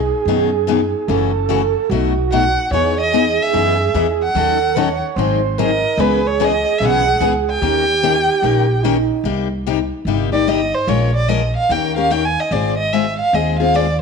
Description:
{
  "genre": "acoustic string swing (jazz manouche)",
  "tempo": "147 BPM",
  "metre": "4/4",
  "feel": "swing 64% on 8ths",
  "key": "C minor from 9.2 s",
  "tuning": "A4 = 444 Hz",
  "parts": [
    { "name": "breathy flute-like synth lead", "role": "second line", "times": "0.0-9.2 s", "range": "D#4 to C#5", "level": "-20 LUFS", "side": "right 10 dB", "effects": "chorus" },
    { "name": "upright bass", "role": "bass", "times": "0.0-14.0 s", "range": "F#1 to F#2", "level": "-21 LUFS", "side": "equal", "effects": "none" },
    { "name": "picked steel-string acoustic guitar", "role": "accompaniment", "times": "0.3-13.9 s", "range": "B2 to A#4", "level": "-20 LUFS", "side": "left 11 dB", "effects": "none" },
    { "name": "warm violin", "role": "melody", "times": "2.3-14.0 s", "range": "B4 to Ab5", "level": "-18 LUFS", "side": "right 2 dB", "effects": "none" }
  ],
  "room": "moderate echo chamber reverb, RT60 1.4 s, studio reverb",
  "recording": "1960s-style stereo with parts hard left and right",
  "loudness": "-14 LUFS",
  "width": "side -5 dB against mid",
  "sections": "0.0-9.2 A section; 9.2-14.0 B section",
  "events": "violin solo 9.2-14.0",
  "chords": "0.0 B6; 1.1 F#m7; 1.9 B7; 2.7 Emaj7; 4.3 D#m7b5; 5.2 G#7; 6.0 C#m7; 7.6 D#7; 9.2 Cm7; 10.9 Bbm7; 11.7 Eb7; 12.5 Ab6"
}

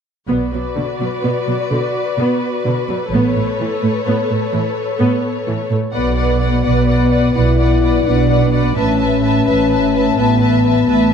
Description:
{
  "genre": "cinematic",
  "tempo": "85 BPM (dotted quarters)",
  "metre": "12/8",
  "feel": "straight",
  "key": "unclear",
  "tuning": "A4 = 440 Hz",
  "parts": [
    { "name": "rich studio violin section", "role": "second line", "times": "0.3-11.1 s", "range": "B4 to A5", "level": "-21 LUFS", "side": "left 4 dB", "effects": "none" },
    { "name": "rich symphonic viola section", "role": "accompaniment", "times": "0.3-11.1 s", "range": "D3 to D5", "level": "-20 LUFS", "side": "right 1 dB", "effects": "none" },
    { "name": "rich symphonic cello section", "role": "bass", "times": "0.3-11.1 s", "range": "A2 to B2", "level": "-20 LUFS", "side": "right 3 dB", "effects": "none" },
    { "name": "rich symphonic double bass section", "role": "bass", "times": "0.3-11.1 s", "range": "A1 to B1", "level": "-18 LUFS", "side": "right 4 dB", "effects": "none" },
    { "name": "mellow French horn section", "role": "sustained chords", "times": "5.9-11.1 s", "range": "B3 to E4", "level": "-16 LUFS", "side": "left 6 dB", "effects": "none" }
  ],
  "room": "moderate scoring stage reverb, RT60 1.7 s",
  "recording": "dark, warm production",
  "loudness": "-13 LUFS",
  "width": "side -7 dB against mid",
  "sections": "0.3-5.9 A section; 5.9-11.1 B section",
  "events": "none",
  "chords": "0.3 Bm; 3.1 Aadd9; 5.9 Bm; 8.8 Aadd9"
}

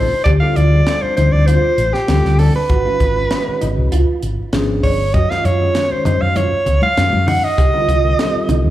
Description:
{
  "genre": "electric jazz fusion",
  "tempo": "98 BPM",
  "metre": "4/4",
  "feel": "straight",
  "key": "unclear",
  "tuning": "A4 = 440 Hz",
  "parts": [
    { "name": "bright soprano saxophone", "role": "melody", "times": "0.0-8.7 s", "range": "G4 to Gb5", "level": "-17 LUFS", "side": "right 1 dB", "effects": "slapback echo" },
    { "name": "tine electric piano", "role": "accompaniment", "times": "0.0-8.7 s", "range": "C#3 to Cb5", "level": "-23 LUFS", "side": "left 1 dB", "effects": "medium stereo tremolo, phaser, slapback echo" },
    { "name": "mellow electric guitar", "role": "stabs", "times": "0.0-8.7 s", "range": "D4 to G4", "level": "-25 LUFS", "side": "right 3 dB", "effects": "analog chorus, slapback echo" },
    { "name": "hollow-body short-scale fingered electric bass", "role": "bass", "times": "0.0-8.7 s", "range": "G1 to Gb2", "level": "-16 LUFS", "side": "equal", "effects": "none" },
    { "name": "crisp fusion drum kit", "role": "drums", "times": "0.3-8.6 s", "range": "hi-hat, kick drum, snare drum", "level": "-22 LUFS", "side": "equal", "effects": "none" },
    { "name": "congas", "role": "percussion", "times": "6.1-8.6 s", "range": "none", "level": "-24 LUFS", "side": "left 1 dB", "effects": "slapback echo" }
  ],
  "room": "light reverb",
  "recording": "live gig heard through the venue's PA, club reverb",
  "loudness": "-13 LUFS",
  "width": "side -14 dB against mid",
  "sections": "0.0-8.7 A section",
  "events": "none",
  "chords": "0.3 Dm7; 2.7 Abm7; 3.9 Db7b9; 5.1 Gbmaj9; 7.6 Cm9"
}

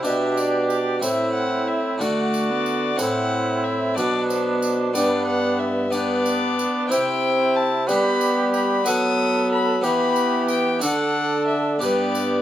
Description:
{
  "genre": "classical, renaissance-style consort dance",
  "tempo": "61 BPM (dotted quarters)",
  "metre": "6/8",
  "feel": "straight",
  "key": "unclear",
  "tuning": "A4 = 441 Hz",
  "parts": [
    { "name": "warm violin", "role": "melody", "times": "0.0-12.4 s", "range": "C5 to D#6", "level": "-26 LUFS", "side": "left 5 dB", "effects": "none" },
    { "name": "mellow cor anglais", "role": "second line", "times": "0.0-12.4 s", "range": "D4 to A4", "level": "-26 LUFS", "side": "right 4 dB", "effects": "none" },
    { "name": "harpsichord", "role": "accompaniment", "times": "0.0-12.4 s", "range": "G2 to B4", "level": "-26 LUFS", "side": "left 1 dB", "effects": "none" },
    { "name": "warm viola", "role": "accompaniment", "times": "0.0-12.4 s", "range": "A3 to D4", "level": "-26 LUFS", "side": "left 1 dB", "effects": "none" },
    { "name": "mellow bassoon", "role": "bass", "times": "0.0-12.4 s", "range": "G2 to G3", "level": "-24 LUFS", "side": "right 1 dB", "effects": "none" },
    { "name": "tambourine", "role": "percussion", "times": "0.0-12.4 s", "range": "none", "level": "-34 LUFS", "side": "right 4 dB", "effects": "none" }
  ],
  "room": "moderate studio reverb, RT60 0.8 s",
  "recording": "none",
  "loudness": "-19 LUFS",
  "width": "side -12 dB against mid",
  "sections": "0.0-12.4 A section",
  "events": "none",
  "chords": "0.1 G/B; 1.0 Am; 2.0 D; 3.0 Am; 4.0 Bm; 5.0 G; 6.9 C; 7.9 G; 8.9 B7/F#; 9.9 Em; 10.8 D; 11.8 G"
}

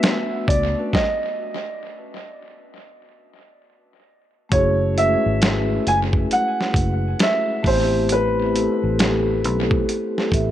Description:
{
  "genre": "lo-fi hip hop",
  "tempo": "67 BPM",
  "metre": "4/4",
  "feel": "swing 64% on 16ths",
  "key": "F# dorian",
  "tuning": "A4 = 439 Hz",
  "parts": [
    { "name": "dark upright piano", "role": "melody", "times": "0.0-10.5 s", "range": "B4 to G#5", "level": "-22 LUFS", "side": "right 1 dB", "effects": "tape echo" },
    { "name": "vibraphone with soft mallets", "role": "accompaniment", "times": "0.0-10.5 s", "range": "G#3 to E5", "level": "-23 LUFS", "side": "left 2 dB", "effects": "tape echo" },
    { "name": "dusty soul sampler-style drum kit", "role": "drums", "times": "0.0-10.5 s", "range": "hi-hat, kick drum, snare drum", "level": "-22 LUFS", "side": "equal", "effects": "vintage 12-bit sampler grit, tape echo" },
    { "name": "vintage muted fingered electric bass", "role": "bass", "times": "0.5-10.5 s", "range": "F#1 to C#2", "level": "-23 LUFS", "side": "equal", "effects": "none" }
  ],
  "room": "light reverb",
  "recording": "echo-heavy mix",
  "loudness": "-17 LUFS",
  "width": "side -12 dB against mid",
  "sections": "0.0-4.5 A section; 4.5-10.5 B section",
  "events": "stop 0.9-4.5; vibraphone fill 9.9-10.5",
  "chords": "0.0 Bm9; 0.9 N.C.; 4.5 F#m9; 7.6 Am9"
}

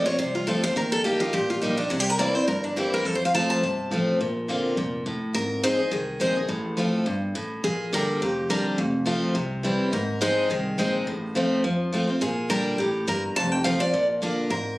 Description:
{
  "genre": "bluegrass",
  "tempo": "210 BPM",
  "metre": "4/4",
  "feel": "swing 56% on 8ths",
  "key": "Bb major",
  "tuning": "A4 = 440 Hz",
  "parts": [
    { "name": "picked steel-string acoustic guitar", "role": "melody", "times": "0.0-14.8 s", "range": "D4 to A5", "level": "-25 LUFS", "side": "equal", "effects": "plate reverb" },
    { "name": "picked steel-string acoustic guitar", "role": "accompaniment", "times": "0.0-14.8 s", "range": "F2 to Ab4", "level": "-25 LUFS", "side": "equal", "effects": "none" },
    { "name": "upright bass", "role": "bass", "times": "0.0-14.8 s", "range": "F1 to F2", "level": "-31 LUFS", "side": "equal", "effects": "none" }
  ],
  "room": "moderate studio reverb, RT60 0.5 s",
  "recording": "recorded on a phone in the room, studio reverb",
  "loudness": "-22 LUFS",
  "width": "side -19 dB against mid",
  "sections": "0.0-5.3 A section; 5.3-14.5 B section",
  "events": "none",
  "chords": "0.0 F; 0.8 Eb; 1.9 C7; 3.1 F; 4.2 Bbadd9; 5.3 Ab; 6.5 F/A; 7.6 Bb6; 8.8 F; 9.4 C; 9.9 Ab; 11.1 F/A; 12.2 Bb6; 13.4 F; 13.9 Bb"
}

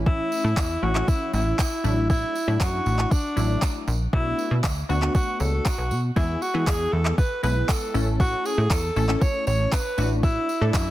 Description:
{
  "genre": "dance-pop",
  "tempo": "118 BPM",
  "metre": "4/4",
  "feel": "straight",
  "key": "A major",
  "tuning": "A4 = 440 Hz",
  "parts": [
    { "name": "funky polysynth comp", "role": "accompaniment", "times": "0.0-10.9 s", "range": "E3 to B4", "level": "-30 LUFS", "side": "left 2 dB", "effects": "chorus, sidechain pumping" },
    { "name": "plucky analog bass", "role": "bass", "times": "0.0-10.9 s", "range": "A1 to E3", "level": "-24 LUFS", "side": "equal", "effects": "sidechain pumping" },
    { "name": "breathy alto saxophone", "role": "melody", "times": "0.1-10.9 s", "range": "D4 to C#5", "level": "-27 LUFS", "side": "equal", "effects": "digital delay" },
    { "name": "smooth R&B drum kit", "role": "drums", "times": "0.1-10.9 s", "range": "handclaps, kick drum", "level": "-23 LUFS", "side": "equal", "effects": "overdrive" },
    { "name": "tambourine", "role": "percussion", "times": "0.3-10.9 s", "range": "none", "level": "-38 LUFS", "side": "right 7 dB", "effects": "none" }
  ],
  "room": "digital ambience",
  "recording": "dense, heavily limited modern master",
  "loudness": "-21 LUFS",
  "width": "side -15 dB against mid",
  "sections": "0.0-10.9 A section",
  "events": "none",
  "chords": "0.0 A; 1.8 Dadd9/A; 4.1 Bm7; 6.2 E; 7.9 A; 10.0 Dadd9/A"
}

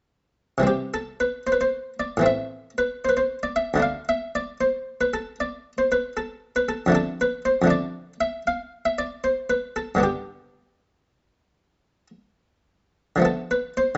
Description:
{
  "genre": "classical, baroque-style suite movement for harpsichord",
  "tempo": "76 BPM (dotted quarters)",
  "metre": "12/8",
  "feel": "rubato",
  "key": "unclear",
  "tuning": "A4 = 440 Hz",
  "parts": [
    { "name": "buff-stop harpsichord", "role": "solo", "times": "0.6-14.0 s", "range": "D2 to F5", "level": "-24 LUFS", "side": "equal", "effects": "none" }
  ],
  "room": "moderate studio reverb, RT60 0.8 s",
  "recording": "nothing above 7.8 kHz",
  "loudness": "-25 LUFS",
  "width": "mono",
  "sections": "0.7-14.0 A section",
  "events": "none",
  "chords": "0.7 C; 2.2 Am; 3.8 D5; 6.9 Dm/F; 10.0 G; 13.2 Bm7b5/D"
}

